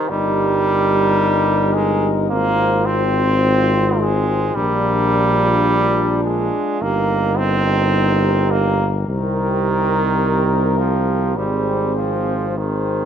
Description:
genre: classical, hymn-like piece for brass band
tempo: 53 BPM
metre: 4/4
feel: rubato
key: Eb major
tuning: A4 = 440 Hz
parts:
  - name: mellow flugelhorn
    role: melody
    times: 0.0-13.1 s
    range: Bb4 to C5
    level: -26 LUFS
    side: left 10 dB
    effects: none
  - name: mellow French horn section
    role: second line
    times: 0.0-13.1 s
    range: F4 to Ab4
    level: -25 LUFS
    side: right 8 dB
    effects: none
  - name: brilliant trombone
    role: accompaniment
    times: 0.0-13.1 s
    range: Eb3 to C4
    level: -19 LUFS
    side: right 2 dB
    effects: none
  - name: warm trombone section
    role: accompaniment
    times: 0.0-13.1 s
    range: C4 to Eb4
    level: -25 LUFS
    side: left 4 dB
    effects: none
  - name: warm tuba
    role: bass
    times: 0.1-13.1 s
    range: G1 to C2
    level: -20 LUFS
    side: left 1 dB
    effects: none
room: light reverb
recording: close, detailed microphones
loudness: -15 LUFS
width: side -8 dB against mid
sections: 0.0-13.1 A section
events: none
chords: 0.1 Eb/G; 2.3 Fm/Ab; 4.6 Bb; 6.8 Eb/G; 9.1 Cm7; 11.4 Ab

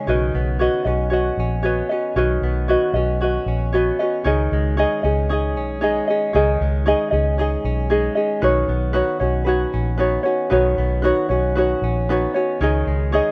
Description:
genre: acoustic pop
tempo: 115 BPM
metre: 4/4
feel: straight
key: unclear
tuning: A4 = 440 Hz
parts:
  - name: ukulele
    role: accompaniment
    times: 0.0-13.3 s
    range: Eb4 to Eb5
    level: -22 LUFS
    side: equal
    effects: none
  - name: direct-recorded clean electric guitar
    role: arpeggios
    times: 0.0-13.3 s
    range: Eb3 to Ab4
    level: -30 LUFS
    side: equal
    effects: none
  - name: vintage muted fingered electric bass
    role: bass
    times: 0.1-13.2 s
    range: Bb1 to Db2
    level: -24 LUFS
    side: equal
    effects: none
room: moderate plate reverb, RT60 3.2 s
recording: none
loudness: -20 LUFS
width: mono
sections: 0.1-13.3 A section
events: none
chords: 0.1 Cbadd9; 4.3 Dbsus2; 8.4 Cbadd9; 12.6 Dbsus2

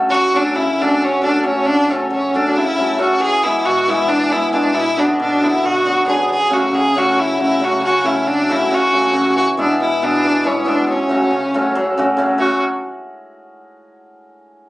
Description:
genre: balkan folk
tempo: 274 BPM (eighths)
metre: 7/8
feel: straight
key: F# minor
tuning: A4 = 440 Hz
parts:
  - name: hammered dulcimer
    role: accompaniment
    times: 0.0-12.6 s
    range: B2 to A4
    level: -17 LUFS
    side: equal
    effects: none
  - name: clear violin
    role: melody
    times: 0.1-12.6 s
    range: C#4 to G#4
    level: -16 LUFS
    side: equal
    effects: none
room: moderate small room reverb, RT60 0.5 s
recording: recorded on a phone in the room, club reverb, nothing above 10.3 kHz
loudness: -14 LUFS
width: side -18 dB against mid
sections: 0.1-12.4 A section; 12.4-13.9 B section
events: none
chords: 0.1 F#m; 3.2 E; 4.7 Bm; 6.3 F#m; 9.3 E; 10.9 F#m

